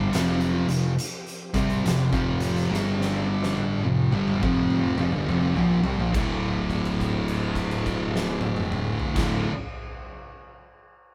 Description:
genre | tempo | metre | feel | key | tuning
stoner and doom metal | 70 BPM | 4/4 | swing 64% on 8ths | D minor | A4 = 440 Hz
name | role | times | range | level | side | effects
bright tonewheel organ | sustained chords | 0.0-9.5 s | D3 to A4 | -40 LUFS | equal | none
fuzz guitar | riff | 0.0-9.5 s | D2 to C4 | -29 LUFS | equal | distortion
thick fuzz guitar | riff | 0.0-9.5 s | D2 to C4 | -30 LUFS | equal | distortion
fuzz picked electric bass | bass | 0.0-9.5 s | D1 to C2 | -33 LUFS | equal | overdrive
oversized low-tuned drum kit | drums | 0.1-9.4 s | crash cymbal, hi-hat, kick drum, snare drum, toms | -32 LUFS | equal | none
room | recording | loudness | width
light reverb | band playing live in one room | -25 LUFS | mono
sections
0.0-6.1 A section; 6.1-9.6 B section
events
drum fill 2.7-6.1; held note 6.1-9.1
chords
0.0 F5; 2.7 G5; 3.8 F5; 6.1 D5

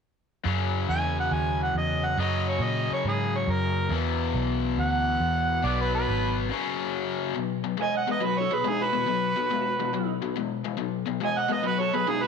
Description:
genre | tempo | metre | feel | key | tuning
rock | 139 BPM | 4/4 | swing 68% on 8ths | B major | A4 = 440 Hz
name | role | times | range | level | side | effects
raw garage guitar | riff | 0.4-12.3 s | E2 to B3 | -28 LUFS | left 10 dB | overdrive
vintage muted picked electric bass | bass | 0.5-6.5 s | G#1 to A#2 | -28 LUFS | right 3 dB | none
mellow harmonica | melody | 0.9-12.3 s | G#4 to G#5 | -28 LUFS | right 3 dB | overdrive, slapback echo
lead guitar through a small cranked amp | second line | 7.8-12.3 s | D#4 to D#5 | -32 LUFS | right 12 dB | overdrive, slapback echo
room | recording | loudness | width
moderate echo chamber reverb, RT60 2.3 s | 1960s-style stereo with parts hard left and right | -24 LUFS | side -6 dB against mid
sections
0.5-7.4 A section; 7.4-12.3 B section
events
break 6.5-7.4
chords
0.5 F#7(no3); 3.9 E5; 5.6 B5; 6.5 F#5; 7.4 B5

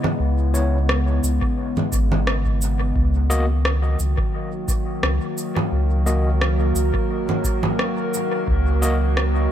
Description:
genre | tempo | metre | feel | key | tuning
ambient dub | 87 BPM | 4/4 | swing 54% on 16ths | unclear | A4 = 440 Hz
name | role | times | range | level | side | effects
warbly tape-like pad | sustained chords | 0.0-9.5 s | C#3 to B4 | -25 LUFS | equal | chorus, built-in reverb
electronic congas, cabasa and rim click | drums | 0.0-9.3 s | none | -25 LUFS | right 1 dB | overdrive, dub echo
warm sub bass | bass | 0.2-9.5 s | G#1 to C#2 | -19 LUFS | equal | none
overdriven tine electric piano | stabs | 0.5-9.0 s | A#3 to D#5 | -30 LUFS | left 2 dB | fast tremolo, dub echo
electronic kick drum | drums | 1.4-8.6 s | none | -24 LUFS | equal | none
room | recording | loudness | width
light reverb | none | -18 LUFS | side -10 dB against mid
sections
0.0-9.5 A section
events
none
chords
0.0 C#m7; 3.0 D#m/C#

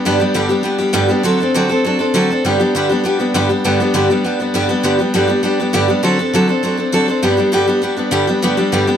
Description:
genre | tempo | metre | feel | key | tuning
rock | 201 BPM | 4/4 | straight | G major | A4 = 440 Hz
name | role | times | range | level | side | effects
picked steel-string acoustic guitar | solo | 0.0-9.0 s | G2 to A4 | -13 LUFS | equal | tape echo
room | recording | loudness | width
light reverb | none | -13 LUFS | side -9 dB against mid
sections
0.0-8.4 A section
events
none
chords
0.0 G; 1.3 D7; 2.4 G; 6.0 D7; 7.2 G

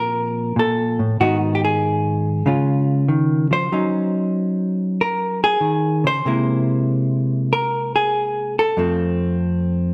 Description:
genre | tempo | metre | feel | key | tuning
solo jazz | 95 BPM | 4/4 | swing 68% on 8ths | unclear | A4 = 442 Hz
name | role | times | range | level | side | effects
hollow-body jazz guitar | solo | 0.0-9.9 s | F2 to C5 | -20 LUFS | equal | none
room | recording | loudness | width
moderate scoring stage reverb, RT60 1.6 s | close, detailed microphones | -20 LUFS | mono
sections
0.0-9.9 A section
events
none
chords
0.0 Bbmaj9; 1.2 Abm; 2.5 Db; 3.7 Gbsus2; 6.2 Caug7; 8.8 F

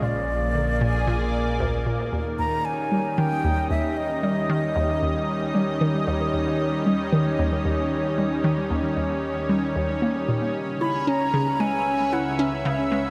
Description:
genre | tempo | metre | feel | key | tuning
ambient, sequencer-driven space music | 114 BPM | 4/4 | straight | unclear | A4 = 440 Hz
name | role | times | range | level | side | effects
wooden flute | melody | 0.0-5.5, 10.8-13.1 s | D5 to B5 | -31 LUFS | equal | analog delay
lush unison pad | sustained chords | 0.0-13.1 s | Bb2 to E5 | -28 LUFS | equal | chorus
hollow square pluck | riff | 0.0-13.1 s | D2 to E4 | -28 LUFS | equal | chorus, analog delay
fat analog bass | bass | 0.0-13.1 s | Bb1 to D#2 | -36 LUFS | equal | none
bubbling stepped-filter texture | texture | 2.1-13.1 s | C#5 | -46 LUFS | equal | none
room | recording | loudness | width
wet huge ambient reverb, RT60 8.8 s | none | -24 LUFS | mono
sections
0.0-2.1 A section; 2.1-13.1 B section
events
fade-in on analog synth bass 2.1-13.1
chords
0.0 Bb7; 2.1 D#7; 10.5 C#m7

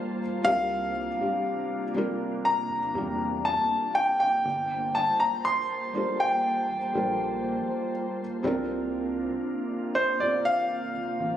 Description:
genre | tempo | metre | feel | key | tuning
R&B | 60 BPM | 4/4 | straight | unclear | A4 = 439 Hz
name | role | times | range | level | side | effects
felt-muted upright piano | accompaniment | 0.0-11.4 s | C3 to C5 | -31 LUFS | equal | none
glassy FM pad | sustained chords | 0.0-11.4 s | C3 to A5 | -35 LUFS | right 1 dB | ensemble chorus, built-in reverb
clear baby grand piano | melody | 0.4-11.4 s | C5 to C6 | -26 LUFS | equal | digital delay
rubbery square bass | bass | 0.4-11.4 s | G1 to E2 | -38 LUFS | right 1 dB | none
room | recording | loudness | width
moderate lush hall reverb, RT60 2.9 s | recorded on a phone in the room, club reverb, compression | -25 LUFS | side -10 dB against mid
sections
0.0-8.4 A section; 8.4-11.4 B section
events
none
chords
0.4 C9sus4; 4.4 Gm11; 8.4 C9sus4

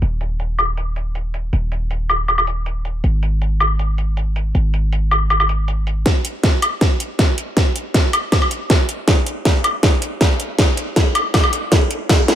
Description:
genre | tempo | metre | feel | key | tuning
future bass | 159 BPM | 4/4 | half-time | unclear | A4 = 439 Hz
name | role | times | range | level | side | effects
warm 808-style bass | bass | 0.0-6.0 s | Eb1 to Ab1 | -18 LUFS | equal | tube saturation, sidechain pumping
pop drum kit | drums | 0.0-12.4 s | hi-hat, snare drum, woodblock | -18 LUFS | equal | overdrive, high-pass filter on hats, low-pass filter on hats, high-pass filter on perc, low-pass filter on perc, high-pass filter on snare, low-pass filter on snare, high-pass filter on room, low-pass filter on room
electronic kick drum | drums | 6.1-12.2 s | none | -16 LUFS | equal | overdrive
room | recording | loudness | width
light reverb | none | -15 LUFS | side -11 dB against mid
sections
0.0-6.1 A section; 6.1-12.4 B section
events
build-up 6.1-12.4; drum fill 6.1-12.4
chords
none

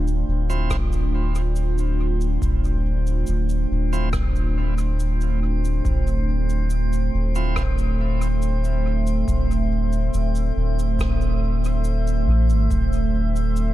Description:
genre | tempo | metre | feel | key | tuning
ambient dub | 70 BPM | 4/4 | straight | D minor | A4 = 445 Hz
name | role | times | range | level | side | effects
deep dark ambient pad | sustained chords | 0.0-13.7 s | A3 to E5 | -27 LUFS | right 2 dB | chorus, built-in reverb
soft dub sub bass | bass | 0.0-13.7 s | D1 to A1 | -21 LUFS | equal | none
drifting glass-harmonics texture | texture | 0.0-13.7 s | C4 to C5 | -35 LUFS | right 3 dB | chorus, built-in reverb
cabasa and rim click | drums | 0.1-13.7 s | none | -37 LUFS | equal | studio reverb, dub echo
bright tonewheel organ | stabs | 0.5-7.6 s | F3 to E4 | -36 LUFS | right 5 dB | overdrive, stopped rotary speaker, dub echo
electronic kick drum | drums | 0.7-12.9 s | none | -26 LUFS | equal | overdrive, studio reverb
room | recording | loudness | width
small room ambience | dark, warm production | -19 LUFS | side -14 dB against mid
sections
0.0-13.7 A section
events
none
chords
0.0 Dm9; 12.7 C6/D

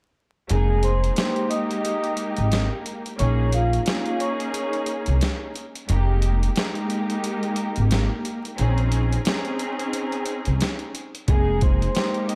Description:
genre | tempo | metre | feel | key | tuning
hip hop, boom-bap hip-hop | 89 BPM | 4/4 | swing 57% on 16ths | F minor | A4 = 440 Hz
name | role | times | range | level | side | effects
vibraphone with soft mallets | melody | 0.5-5.2, 11.3-12.4 s | F4 to Eb6 | -29 LUFS | equal | high-pass filter, low-pass filter, delay
rich studio string section | accompaniment | 0.5-12.4 s | Ab3 to Ab4 | -30 LUFS | equal | cassette tape, high-pass filter, low-pass filter
upright bass | bass | 0.5-11.9 s | F1 to C2 | -23 LUFS | equal | none
boom bap sampler-style drum kit | drums | 0.5-12.4 s | hi-hat, kick drum, snare drum | -29 LUFS | equal | none
room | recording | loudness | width
studio reverb | vinyl crackle | -23 LUFS | mono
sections
0.5-12.4 A section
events
kick muted 0.5-11.3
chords
0.5 Fm11; 3.2 Bbm11; 5.9 Fm11; 8.6 Bbm11; 11.3 Fm11

